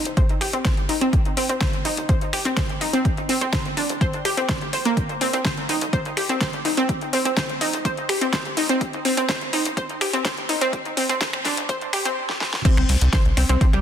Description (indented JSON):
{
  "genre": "progressive house",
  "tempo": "125 BPM",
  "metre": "4/4",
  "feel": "straight",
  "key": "C minor",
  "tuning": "A4 = 440 Hz",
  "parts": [
    { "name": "tight sequencer bass", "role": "bass", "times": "0.1-13.8 s", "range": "Eb1 to C2", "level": "-27 LUFS", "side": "equal", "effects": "sidechain pumping, high-pass filter" },
    { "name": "deep house drum kit", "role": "drums", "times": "0.1-13.8 s", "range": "crash cymbal, finger snaps, hi-hat, ride cymbal, snare drum", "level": "-26 LUFS", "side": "left 1 dB", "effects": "overdrive, sidechain pumping on hats, sidechain pumping on cymbals" },
    { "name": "analog pluck", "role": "arpeggios", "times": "0.2-13.8 s", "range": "G3 to C6", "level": "-23 LUFS", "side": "equal", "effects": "chorus, sidechain pumping, dub echo" },
    { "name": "electronic kick drum", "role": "drums", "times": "0.2-13.7 s", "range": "none", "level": "-22 LUFS", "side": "equal", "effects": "none" }
  ],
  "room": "light reverb, digital ambience",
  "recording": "dense, heavily limited modern master, high-pass filter",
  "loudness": "-19 LUFS",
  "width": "side -9 dB against mid",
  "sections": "0.0-12.7 A section; 12.7-13.8 B section",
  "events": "build-up 0.0-12.7; filter sweep 0.0-12.7; drum fill 12.3-12.7; drop 12.7-13.8",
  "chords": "0.0 N.C.; 1.1 F5; 3.1 N.C.; 5.0 Cm; 6.9 N.C.; 8.8 F5; 10.7 G5; 12.7 C5"
}